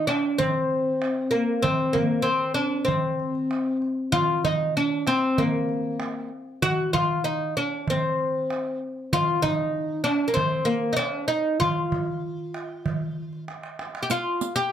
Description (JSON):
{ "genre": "Turkish makam ensemble", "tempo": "96 BPM", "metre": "4/4", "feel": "straight", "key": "F makam hicaz", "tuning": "A4 = 440 Hz", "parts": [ { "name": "oud", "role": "melody", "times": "0.0-14.7 s", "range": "Bb3 to G4", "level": "-23 LUFS", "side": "left 1 dB", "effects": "none" }, { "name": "darbuka", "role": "percussion", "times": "0.1-14.1 s", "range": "none", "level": "-29 LUFS", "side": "right 3 dB", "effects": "none" }, { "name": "riq", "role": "percussion", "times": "14.1-14.6 s", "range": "none", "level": "-32 LUFS", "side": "right 7 dB", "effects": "none" } ], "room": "moderate studio reverb, RT60 0.5 s", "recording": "none", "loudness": "-22 LUFS", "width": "side -9 dB against mid", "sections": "0.0-14.1 A section", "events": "drum fill 13.5-14.1", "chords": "none" }